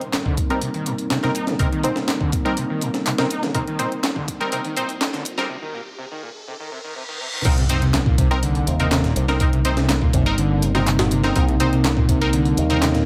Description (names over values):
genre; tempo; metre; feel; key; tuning
breakbeat, breaks; 123 BPM; 4/4; straight; C minor; A4 = 440 Hz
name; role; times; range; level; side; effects
dark analog pad; sustained chords; 0.0-13.1 s; G3 to Bb4; -28 LUFS; equal; chorus, sidechain pumping
band-passed chord stab; stabs; 0.0-13.1 s; C4 to C5; -28 LUFS; equal; chorus, digital delay
punchy analog drum machine; drums; 0.0-13.0 s; handclaps, hi-hat; -31 LUFS; equal; none
riser, reverse cymbal and sub drop; sound effects; 4.0-9.4 s; none; -35 LUFS; equal; none
breakbeat sampler-style drum kit; drums; 0.1-13.1 s; crash cymbal, hi-hat, kick drum, snare drum; -25 LUFS; equal; none
screaming distorted acid line; riff; 0.3-13.0 s; Bb2 to Eb4; -28 LUFS; equal; distortion, lush chorus, digital delay
picked electric bass with an envelope filter; bass; 7.4-13.0 s; G1 to Eb2; -24 LUFS; equal; tube saturation
room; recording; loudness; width
light reverb, digital ambience; high-pass filter; -20 LUFS; mono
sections
0.0-7.5 A section; 7.5-13.1 B section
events
build-up 0.0-7.5; filter sweep on acid bass 0.0-7.5; filter sweep on synth stab 0.0-7.5; filter sweep 0.0-7.5; riser 4.0-7.5; break 5.5-7.5; reverse cymbal 6.5-7.5; drop 7.5-13.1; impact 7.5-9.4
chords
0.0 Cm7